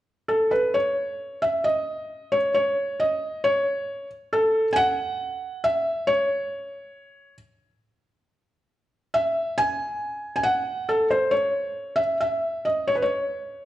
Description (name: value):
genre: fado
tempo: 68 BPM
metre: 4/4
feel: rubato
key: C# minor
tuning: A4 = 442 Hz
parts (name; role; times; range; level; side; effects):
- felt-muted upright piano; solo; 0.3-13.7 s; A4 to G#5; -22 LUFS; equal; none
room: wet recital hall reverb, RT60 1.3 s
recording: none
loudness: -22 LUFS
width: side -14 dB against mid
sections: 0.7-13.7 A section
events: none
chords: none